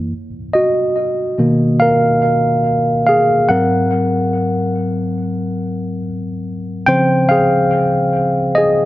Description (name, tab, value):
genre	R&B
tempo	71 BPM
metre	4/4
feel	swing 55% on 16ths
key	Ab major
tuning	A4 = 439 Hz
part	tine electric piano	solo	0.0-8.9 s	Ab2 to G5	-13 LUFS	equal	tape echo
room	light reverb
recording	echo-heavy mix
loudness	-13 LUFS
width	side -16 dB against mid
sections	0.0-8.9 A section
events	tine electric piano solo 0.0-8.9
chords	0.1 Bmaj7; 3.5 Ab9; 6.9 Dbmaj9